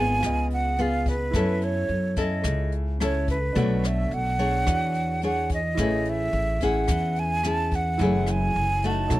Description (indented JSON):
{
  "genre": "bossa nova",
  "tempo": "108 BPM",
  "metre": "4/4",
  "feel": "straight",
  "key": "unclear",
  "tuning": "A4 = 441 Hz",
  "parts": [
    { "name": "breathy mellow silver concert flute", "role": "melody", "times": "0.0-9.2 s", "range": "B4 to A5", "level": "-27 LUFS", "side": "right 3 dB", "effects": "none" },
    { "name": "nylon-string guitar", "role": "accompaniment", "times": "0.0-9.2 s", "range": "B2 to C#5", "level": "-27 LUFS", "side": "left 2 dB", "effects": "none" },
    { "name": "warm grand piano", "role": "accompaniment", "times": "0.0-9.2 s", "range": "D4 to D#5", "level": "-36 LUFS", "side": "right 5 dB", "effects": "none" },
    { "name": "upright bass", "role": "bass", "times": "0.0-9.2 s", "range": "F#1 to F#2", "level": "-27 LUFS", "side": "equal", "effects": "none" },
    { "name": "jazz brush drum kit", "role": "drums", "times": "0.2-9.2 s", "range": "hi-hat, kick drum, rim click", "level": "-29 LUFS", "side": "equal", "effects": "none" }
  ],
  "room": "little or no reverb",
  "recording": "dry, close 1970s-style studio recording",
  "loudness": "-22 LUFS",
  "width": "side -16 dB against mid",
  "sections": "0.0-9.2 A section",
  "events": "none",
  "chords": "0.2 C#7; 1.3 F#m7; 3.6 Bm7; 4.7 E13; 5.8 Amaj7; 8.0 F#m9",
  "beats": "0.23 0.79 | 1.34 1.90 2.45 3.01 | 3.56 4.12 4.67 5.23 | 5.78 6.34 6.89 7.45 | 8.00 8.56 9.11"
}